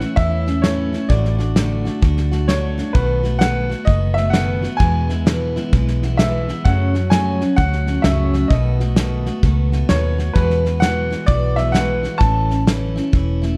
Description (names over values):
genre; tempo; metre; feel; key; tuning
honky-tonk and classic country; 130 BPM; 4/4; swing 64% on 8ths; A major; A4 = 440 Hz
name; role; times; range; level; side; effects
bright upright piano; melody; 0.0-12.6 s; B4 to A5; -26 LUFS; equal; none
picked steel-string acoustic guitar; accompaniment; 0.0-13.6 s; E2 to F#4; -24 LUFS; equal; none
vintage muted fingered electric bass; bass; 0.0-13.6 s; E1 to F#2; -22 LUFS; equal; none
natural country drum kit; drums; 0.0-13.5 s; hi-hat, kick drum, snare drum; -21 LUFS; equal; none
room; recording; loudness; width
light reverb; dark, warm production; -18 LUFS; mono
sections
0.0-13.6 A section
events
none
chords
0.0 A; 1.1 D/A; 3.0 B7; 4.8 E; 6.7 F#m; 8.5 B7; 10.4 Eadd9; 12.2 A